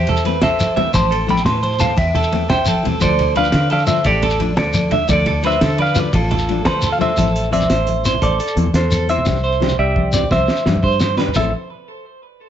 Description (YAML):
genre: highlife guitar band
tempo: 115 BPM (dotted quarters)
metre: 12/8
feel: straight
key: A minor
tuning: A4 = 440 Hz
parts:
  - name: semi-hollow electric guitar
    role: melody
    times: 0.0-11.5 s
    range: F4 to C6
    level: -20 LUFS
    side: left 1 dB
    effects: none
  - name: clean electric guitar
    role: arpeggios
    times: 0.0-11.5 s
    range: G4 to E5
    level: -22 LUFS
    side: right 6 dB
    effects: tremolo, tape echo
  - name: fingered electric bass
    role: bass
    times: 0.0-11.5 s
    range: A1 to D3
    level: -21 LUFS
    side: equal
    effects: none
  - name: cloth-damped thuddy drum kit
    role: drums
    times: 0.1-11.4 s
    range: crash cymbal, hi-hat, kick drum, ride cymbal, snare drum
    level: -23 LUFS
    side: equal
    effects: none
  - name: congas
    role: percussion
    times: 0.1-11.5 s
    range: none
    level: -23 LUFS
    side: equal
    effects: none
  - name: nylon-string guitar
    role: accompaniment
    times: 0.2-11.5 s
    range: E3 to G4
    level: -24 LUFS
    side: left 9 dB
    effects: none
  - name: shekere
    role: percussion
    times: 0.2-11.5 s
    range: none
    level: -23 LUFS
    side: left 2 dB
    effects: none
room: light reverb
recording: nothing above 7.9 kHz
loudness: -14 LUFS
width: side -10 dB against mid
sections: 0.0-7.2 A section; 7.2-11.4 B section; 11.4-12.5 C section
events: drum fill 6.5-7.2, 9.3-11.4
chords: 0.0 Am; 9.3 Cadd9; 11.4 Am